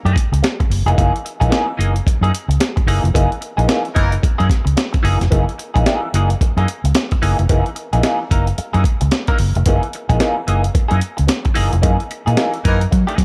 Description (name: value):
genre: funk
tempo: 111 BPM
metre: 4/4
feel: swing 60% on 16ths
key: F# mixolydian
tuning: A4 = 442 Hz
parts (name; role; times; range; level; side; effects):
- vintage muted fingered electric bass; bass; 0.0-13.2 s; E#1 to F#3; -18 LUFS; equal; none
- electric guitar at the edge of break-up; accompaniment; 0.1-13.2 s; E3 to A#4; -23 LUFS; equal; wah, spring reverb
- breakbeat sampler-style drum kit; drums; 0.1-13.2 s; hi-hat, kick drum, snare drum; -20 LUFS; equal; none
- warm horn section; second line; 3.9-4.1, 12.7-12.8 s; E3 to A#4; -26 LUFS; equal; none
room: little or no reverb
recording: none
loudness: -17 LUFS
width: mono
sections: 0.0-13.2 A section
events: band accent 3.1-5.3, 11.8-13.2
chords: 0.0 F#13